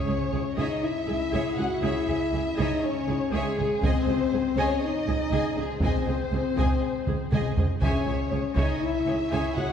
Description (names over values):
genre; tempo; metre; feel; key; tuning
cinematic, epic orchestral film score; 120 BPM; 4/4; straight; C# harmonic minor; A4 = 439 Hz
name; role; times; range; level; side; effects
warm symphonic violin section; melody; 0.0-9.7 s; G#4 to F#5; -33 LUFS; left 4 dB; none
rich symphonic violin section; second line; 0.0-9.7 s; E4 to G#5; -36 LUFS; left 2 dB; none
rich symphonic viola section; accompaniment; 0.0-9.6 s; G#4 to C#5; -35 LUFS; equal; none
mellow French horn section; sustained chords; 0.0-9.7 s; G#3 to F#4; -28 LUFS; left 4 dB; none
timpani; percussion; 0.0-0.5 s; C#3; -38 LUFS; right 2 dB; none
rich symphonic cello section; bass; 0.1-9.7 s; C#2; -32 LUFS; right 3 dB; none
rich symphonic double bass section; bass; 0.1-9.6 s; C#2; -33 LUFS; right 4 dB; none
taiko ensemble; drums; 3.8-9.0 s; none; -28 LUFS; right 1 dB; none
room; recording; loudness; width
wet scoring stage reverb, RT60 2.0 s; heard from further back in the room; -24 LUFS; side -8 dB against mid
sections
0.0-9.7 A section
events
drum fill 7.1-7.8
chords
0.0 C#m; 3.8 G#/C#; 7.8 C#m